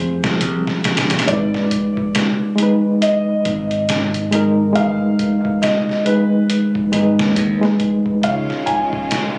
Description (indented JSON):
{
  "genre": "trip hop",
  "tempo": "69 BPM",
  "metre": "4/4",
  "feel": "swing 59% on 16ths",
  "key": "unclear",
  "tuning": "A4 = 437 Hz",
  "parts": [
    { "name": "felt-muted upright piano", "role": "melody", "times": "0.0-9.4 s", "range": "Cb5 to Ab5", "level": "-24 LUFS", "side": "equal", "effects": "tape echo" },
    { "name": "reed electric piano", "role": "accompaniment", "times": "0.0-9.4 s", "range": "F3 to Db5", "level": "-19 LUFS", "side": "equal", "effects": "fast tremolo, tape echo" },
    { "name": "modern bright fingered electric bass", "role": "bass", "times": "0.0-8.5 s", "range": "F1 to Eb2", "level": "-25 LUFS", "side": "equal", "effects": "none" },
    { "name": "trip hop sampler-style drum kit", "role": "drums", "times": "0.2-9.4 s", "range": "hi-hat, kick drum, snare drum", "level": "-24 LUFS", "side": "equal", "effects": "studio ambience" },
    { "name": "bright studio string section", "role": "sustained chords", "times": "8.2-9.4 s", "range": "Eb3 to F4", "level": "-28 LUFS", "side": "equal", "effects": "vintage 12-bit sampler grit" }
  ],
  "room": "moderate echo chamber reverb, RT60 2.4 s",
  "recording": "recorded on a phone in the room, club reverb, compression, nothing above 10.9 kHz",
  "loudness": "-17 LUFS",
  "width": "mono",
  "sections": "0.0-9.4 A section",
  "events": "none",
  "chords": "0.0 Fm; 1.3 Abm; 8.2 Dbadd9"
}